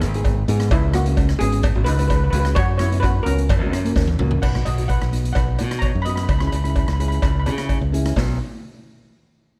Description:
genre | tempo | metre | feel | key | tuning
calypso | 129 BPM | 4/4 | straight | B major | A4 = 440 Hz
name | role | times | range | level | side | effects
nylon-string guitar | accompaniment | 0.0-8.4 s | G#3 to G#4 | -30 LUFS | equal | none
modern bright fingered electric bass | bass | 0.0-8.4 s | G#1 to C#3 | -23 LUFS | equal | none
street-band drum kit | drums | 0.0-8.3 s | crash cymbal, hi-hat, kick drum, rim click, snare drum, toms | -25 LUFS | equal | none
cowbell | percussion | 0.2-8.4 s | none | -35 LUFS | equal | none
steel pan | melody | 0.7-7.5 s | G#3 to B5 | -28 LUFS | equal | none
room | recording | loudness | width
light reverb | dark, warm production | -20 LUFS | mono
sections
0.0-4.4 A section; 4.4-8.2 B section; 8.2-9.6 C section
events
drum fill 4.0-4.4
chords
0.0 G#m; 0.7 C#sus4; 2.6 F#sus4; 3.5 F#; 4.4 B; 6.3 C#m; 8.2 B

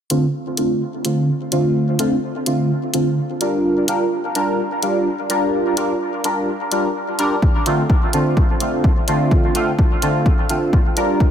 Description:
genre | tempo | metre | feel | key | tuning
dub techno | 127 BPM | 4/4 | swing 54% on 16ths | D minor | A4 = 440 Hz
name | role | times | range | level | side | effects
resonant sweep polysynth | stabs | 0.1-11.3 s | D3 to Bb4 | -18 LUFS | equal | chorus, phaser, sidechain pumping, dub echo
electronic hi-hat | drums | 0.1-11.1 s | none | -22 LUFS | equal | studio reverb
electronic kick drum | drums | 7.4-11.3 s | none | -16 LUFS | equal | studio reverb
room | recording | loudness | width
light reverb, digital ambience | none | -16 LUFS | side -9 dB against mid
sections
0.0-11.3 A section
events
filter sweep on analog polysynth 0.0-11.3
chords
0.0 Dm7; 3.6 Gm7; 7.4 Dm7

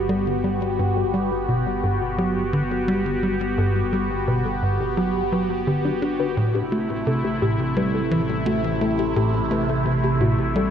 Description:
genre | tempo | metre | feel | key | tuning
ambient, sequencer-driven space music | 86 BPM | 4/4 | straight | G major | A4 = 440 Hz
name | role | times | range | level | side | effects
phased analog pad | sustained chords | 0.0-10.7 s | C3 to G4 | -24 LUFS | equal | phaser, chorus, shimmer reverb
analog drone | bass | 0.0-10.7 s | G1 to A1 | -31 LUFS | equal | chorus, phaser
soft round pluck | arpeggios | 0.1-10.7 s | D4 to G5 | -31 LUFS | left 3 dB | chorus, auto-pan, ping-pong delay, shimmer reverb
tight sequencer bass | riff | 0.1-10.7 s | G2 to D4 | -23 LUFS | equal | ping-pong delay
room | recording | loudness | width
moderate lush hall reverb, RT60 2.7 s | none | -20 LUFS | side -8 dB against mid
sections
0.0-10.7 A section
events
none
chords
0.0 Gmaj7; 6.4 Am

